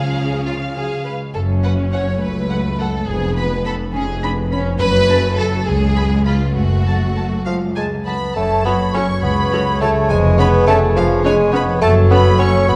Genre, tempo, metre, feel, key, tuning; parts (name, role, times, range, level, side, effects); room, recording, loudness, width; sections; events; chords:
cinematic, playful, whimsical film cue; 69 BPM (dotted quarters); 6/8; straight; F# minor; A4 = 440 Hz
warm studio violin section; melody; 0.0-12.5 s; C#5 to B5; -32 LUFS; equal
warm studio violin section; second line; 0.0-12.8 s; E#4 to C#6; -25 LUFS; equal
warm studio viola section; accompaniment; 0.0-12.5 s; E#3 to B4; -29 LUFS; equal
dark French horn section; sustained chords; 0.0-12.8 s; E#3 to G#4; -27 LUFS; equal
concert harp; arpeggios; 0.0-12.8 s; E#2 to C#5; -27 LUFS; equal
rich studio double bass section; bass; 0.0-12.8 s; E#1 to C#2; -24 LUFS; equal
warm studio cello section; bass; 0.0-12.8 s; C#2 to C#3; -23 LUFS; equal
vibraphone with medium mallets; melody; 7.5-12.8 s; E#4 to C#5; -25 LUFS; equal
hollow small flute group; second line; 7.5-12.8 s; E#5 to C#6; -29 LUFS; equal
clear bassoon; accompaniment; 7.5-12.8 s; E#3 to C#4; -21 LUFS; equal
mellow clarinet; second line; 8.4-12.8 s; F#4 to C#5; -28 LUFS; equal
warm oboe; second line; 8.4-12.8 s; C#5; -29 LUFS; equal
wet recital hall reverb, RT60 1.6 s; -17 LUFS; mono
0.0-8.4 A section; 8.4-12.8 A section
0.0 C#; 1.4 F#m; 3.1 C#7/E#; 4.8 F#m; 5.7 C#7; 6.6 F#m; 10.1 C#7/E#; 11.8 F#m